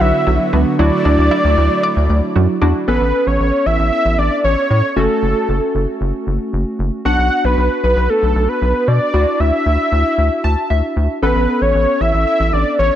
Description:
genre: synth-pop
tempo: 115 BPM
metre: 4/4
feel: straight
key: A major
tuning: A4 = 440 Hz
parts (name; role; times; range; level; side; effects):
- wide unison lead; melody; 0.0-13.0 s; A4 to F#5; -16 LUFS; equal; digital delay
- warm analog keys; accompaniment; 0.0-13.0 s; A3 to A5; -21 LUFS; equal; chorus
- brassy analog pad; sustained chords; 0.0-2.9 s; D3 to F#4; -21 LUFS; equal; chorus
- rubbery square bass; bass; 0.0-12.9 s; F#1 to B2; -16 LUFS; equal; none
- analog pluck; arpeggios; 0.3-2.8 s; F#3 to D5; -22 LUFS; right 3 dB; chorus, digital delay
room: light reverb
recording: none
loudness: -13 LUFS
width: side -11 dB against mid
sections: 0.0-2.9 A section; 2.9-13.0 B section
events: synth keys fill 10.2-11.2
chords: 0.0 Bm; 0.8 Dadd9; 2.9 Aadd9; 5.0 F#m; 7.1 Bm; 9.1 Dadd9; 11.2 Aadd9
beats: 0.27 | 0.79 1.31 1.83 2.36 | 2.88 3.40 3.92 4.44 | 4.96 5.49 6.01 6.53 | 7.05 7.57 8.10 8.62 | 9.14 9.66 10.18 10.70 | 11.22 11.75 12.27 12.79

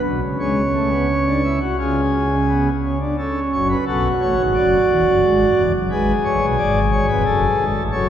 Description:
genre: classical, baroque-style 3-part fugue for pipe organ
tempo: 88 BPM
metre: 4/4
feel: straight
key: F# minor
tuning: A4 = 440 Hz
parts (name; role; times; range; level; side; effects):
- pipe organ, principal chorus; solo; 0.0-8.1 s; E1 to D5; -16 LUFS; equal; none
room: wet cathedral reverb, RT60 5.7 s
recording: heard from further back in the room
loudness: -16 LUFS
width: side -10 dB against mid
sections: 0.0-3.2 A section; 3.2-8.1 B section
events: none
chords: 0.4 C#sus4; 1.8 C#; 3.2 F#m; 4.5 E9; 5.9 Fdim7/Ab; 7.3 F#m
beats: | 0.40 1.09 1.79 2.48 | 3.18 3.87 4.55 5.23 | 5.91 6.58 7.26 7.93

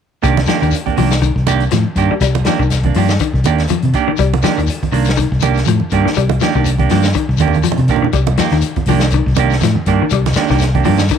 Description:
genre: afrobeat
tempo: 121 BPM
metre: 4/4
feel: swing 56% on 16ths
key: C minor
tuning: A4 = 435 Hz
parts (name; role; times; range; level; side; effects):
- clean electric guitar; arpeggios; 0.2-11.2 s; Eb3 to G3; -20 LUFS; left 12 dB; none
- clean electric guitar; stabs; 0.2-11.0 s; Eb3 to G4; -18 LUFS; right 12 dB; none
- fingered electric bass; bass; 0.2-11.1 s; C2 to C3; -15 LUFS; left 1 dB; none
- vintage drum kit; drums; 0.2-11.2 s; hi-hat, kick drum, snare drum; -21 LUFS; left 1 dB; none
- congas; percussion; 0.2-11.2 s; none; -22 LUFS; right 10 dB; none
- shekere; percussion; 0.2-11.2 s; none; -25 LUFS; left 7 dB; none
room: light reverb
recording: 1960s-style stereo with parts hard left and right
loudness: -12 LUFS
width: side -8 dB against mid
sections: 0.2-11.2 A section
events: drum fill 7.4-8.2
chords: 0.2 Cm9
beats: | 0.23 0.73 1.22 1.72 | 2.21 2.71 3.20 3.70 | 4.19 4.69 5.18 5.68 | 6.17 6.67 7.16 7.66 | 8.15 8.64 9.14 9.63 | 10.13 10.62 11.12

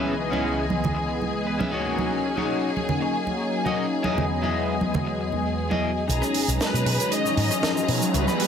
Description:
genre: nu-disco, nu disco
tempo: 117 BPM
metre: 4/4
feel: straight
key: B major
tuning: A4 = 440 Hz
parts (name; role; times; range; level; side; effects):
- warm analog pad; accompaniment; 0.0-8.5 s; C#2 to D#5; -26 LUFS; left 1 dB; chorus, digital delay
- rich symphonic string section; sustained chords; 0.0-8.5 s; G#4 to A#5; -31 LUFS; left 2 dB; none
- electric guitar at the edge of break-up; riff; 0.0-8.4 s; C#4 to G#5; -30 LUFS; left 2 dB; lush chorus, low-pass filter, digital delay
- tight funk drum kit; drums; 0.1-8.5 s; hi-hat, rim click, shaker, snare drum; -28 LUFS; right 2 dB; low-pass filter on hats, low-pass filter on snare, low-pass filter on perc, low-pass filter on room
- congas; percussion; 0.3-5.8 s; none; -30 LUFS; right 3 dB; none
- dark symphonic violin section; melody; 6.1-8.5 s; G#4 to D#5; -28 LUFS; left 1 dB; digital delay
- picked electric bass with an envelope filter; bass; 6.1-8.3 s; B1 to B2; -25 LUFS; equal; none
- riser; sound effects; 7.1-8.5 s; none; -30 LUFS; right 1 dB; none
room: moderate plate reverb, RT60 2.3 s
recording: none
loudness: -22 LUFS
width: side -8 dB against mid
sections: 0.0-6.1 A section; 6.1-8.5 B section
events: clean electric guitar fill 1.2-2.0; build-up 6.1-8.5; filter sweep on clean electric guitar 6.1-8.5; riser 7.1-8.5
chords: 0.0 C#m7; 1.7 D#m7; 4.0 Emaj7; 6.1 B6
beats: 0.45 0.96 1.48 | 1.99 2.50 3.01 3.53 | 4.04 4.55 5.07 5.58 | 6.09 6.60 7.12 7.63 | 8.14

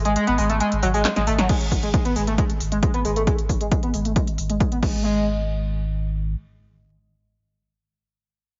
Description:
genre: driving peak-time techno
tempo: 135 BPM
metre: 4/4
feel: straight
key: G# minor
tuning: A4 = 440 Hz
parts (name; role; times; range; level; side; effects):
- warm sub bass; bass; 0.0-6.3 s; G#1; -28 LUFS; equal; overdrive, sidechain pumping, low-pass filter
- overdriven synth lead; riff; 0.1-5.2 s; F#3 to B3; -26 LUFS; equal; tube saturation, lush chorus, sidechain pumping, digital delay
- techno drum kit; drums; 0.1-4.9 s; crash cymbal, handclaps, hi-hat, snare drum; -31 LUFS; equal; none
- electronic kick drum; drums; 1.5-4.9 s; none; -24 LUFS; equal; none
room: moderate lush hall reverb, RT60 1.9 s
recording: heavily compressed radio sound, nothing above 7.5 kHz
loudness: -22 LUFS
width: mono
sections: 0.0-1.5 A section; 1.5-5.0 B section; 5.0-8.6 C section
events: break 0.0-1.5; drop 0.0-1.5; drum fill 1.0-1.5; filter sweep on analog synth lead 1.5-5.0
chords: none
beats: 0.16 0.60 1.05 | 1.49 1.94 2.38 2.83 | 3.27 3.71 4.16 4.60 | 5.05 5.49 5.94

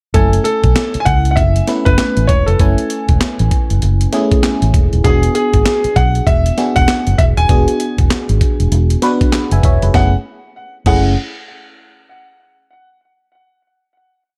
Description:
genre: R&B, new jack swing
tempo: 98 BPM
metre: 4/4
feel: swing 61% on 16ths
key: F# minor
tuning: A4 = 440 Hz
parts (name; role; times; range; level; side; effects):
- clear concert grand piano; melody; 0.1-11.2 s; G#4 to G#5; -20 LUFS; equal; none
- FM electric piano; accompaniment; 0.1-11.1 s; A3 to G#5; -22 LUFS; equal; chorus, phaser
- vintage muted fingered electric bass; bass; 0.1-11.1 s; D#1 to C#2; -16 LUFS; equal; none
- breakbeat sampler-style drum kit; drums; 0.1-11.0 s; crash cymbal, handclaps, hi-hat, kick drum, snare drum; -18 LUFS; equal; none
room: little or no reverb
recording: none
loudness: -14 LUFS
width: mono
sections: 0.1-9.9 verse; 9.9-12.4 final chord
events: none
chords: 0.1 F#m7; 5.0 E7; 9.9 F#m7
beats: | 0.14 0.76 1.37 1.98 | 2.59 3.21 3.82 4.43 | 5.04 5.66 6.27 6.88 | 7.49 8.11 8.72 9.33 | 9.94 10.55

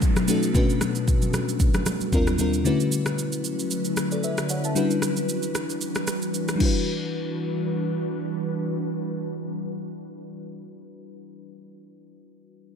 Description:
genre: amapiano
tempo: 114 BPM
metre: 4/4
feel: swing 55% on 16ths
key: E dorian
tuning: A4 = 436 Hz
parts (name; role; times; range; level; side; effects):
- crystalline FM electric piano; accompaniment; 0.0-12.8 s; D#2 to A5; -27 LUFS; left 3 dB; chorus, low-pass filter
- ethereal airy pad; sustained chords; 0.0-11.0 s; B2 to B4; -29 LUFS; equal; ensemble chorus, built-in reverb, sidechain pumping, low-pass filter
- afro-pop drum kit; drums; 0.0-6.7 s; crash cymbal, kick drum, rim click, shaker; -26 LUFS; equal; none
- downlifter; sound effects; 0.0-2.7 s; none; -41 LUFS; equal; none
- congas; percussion; 0.2-2.4 s; none; -32 LUFS; right 1 dB; none
room: light reverb, digital ambience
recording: none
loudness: -22 LUFS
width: side -7 dB against mid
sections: 0.0-6.9 A section; 6.9-11.1 B section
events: filter sweep 0.0-6.9; kick muted 5.8-6.9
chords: 0.0 B9; 0.5 Gmaj9#11/B; 2.1 D#maj13; 2.7 Dmaj13; 4.8 Em9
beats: 0.02 | 0.55 1.07 1.60 2.13 | 2.65 3.18 3.71 4.23 | 4.76 5.28 5.81 6.34 | 6.86 7.39 7.92 8.44 | 8.97 9.49 10.02 10.55

